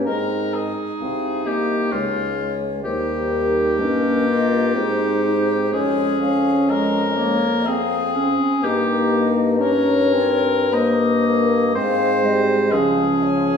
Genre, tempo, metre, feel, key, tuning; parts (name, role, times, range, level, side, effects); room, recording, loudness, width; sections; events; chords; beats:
classical, slow romantic movement for wind quintet; 51-66 BPM; 3/4; rubato; Ab major; A4 = 440 Hz
mellow hollow concert flute; melody; 0.0-13.6 s; Bb4 to F5; -25 LUFS; left 7 dB
clear French horn; accompaniment; 0.0-13.6 s; F3 to Db4; -23 LUFS; left 2 dB
clear clarinet; accompaniment; 0.0-13.6 s; Ab3 to F4; -24 LUFS; right 4 dB
mellow bassoon; bass; 0.0-13.6 s; C2 to Ab2; -23 LUFS; right 1 dB
warm oboe; second line; 0.1-13.6 s; F4 to Eb5; -23 LUFS; left 3 dB
wet recital hall reverb, RT60 1.5 s; heard from further back in the room, small room ambience; -17 LUFS; side -6 dB against mid
0.0-13.6 A section
0.1 Ab; 1.9 Dbadd9; 2.8 Eb9; 4.7 Ab; 5.7 Db/F; 8.6 Eb7/G; 11.8 Ab; 12.7 Db
| 0.06 1.01 1.92 | 2.85 3.79 4.75 | 5.73 6.69 7.67 | 8.63 9.61 10.73 | 11.76 12.73